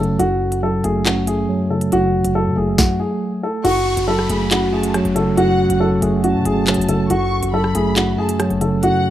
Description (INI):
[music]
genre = hip hop, drill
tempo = 139 BPM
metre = 4/4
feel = half-time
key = F# minor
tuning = A4 = 440 Hz
[part]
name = dark baby grand piano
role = melody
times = 0.0-9.1 s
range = F#4 to A4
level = -20 LUFS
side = equal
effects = digital delay
[part]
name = mellow tine electric piano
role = accompaniment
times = 0.0-9.1 s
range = F#2 to C#4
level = -18 LUFS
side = right 1 dB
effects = slow stereo tremolo
[part]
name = mellow brass ensemble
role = sustained chords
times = 0.0-9.1 s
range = C#3 to F#4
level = -29 LUFS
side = left 1 dB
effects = none
[part]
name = hard-hitting 808-style bass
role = bass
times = 0.0-8.9 s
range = E1 to C#3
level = -28 LUFS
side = equal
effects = none
[part]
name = drill drum kit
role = drums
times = 0.0-8.9 s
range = crash cymbal, handclaps, hi-hat, kick drum, rim click, snare drum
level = -21 LUFS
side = equal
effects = none
[part]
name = warm studio violin section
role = second line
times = 3.6-9.1 s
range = F#5 to C#6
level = -28 LUFS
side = left 1 dB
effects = digital delay
[part]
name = downlifter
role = sound effects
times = 3.6-7.1 s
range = none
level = -33 LUFS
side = left 1 dB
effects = none
[sound]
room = light reverb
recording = rough home demo mix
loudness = -15 LUFS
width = side -12 dB against mid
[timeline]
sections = 0.0-3.6 A section; 3.6-9.1 B section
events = stop 2.8-3.6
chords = 0.0 F#m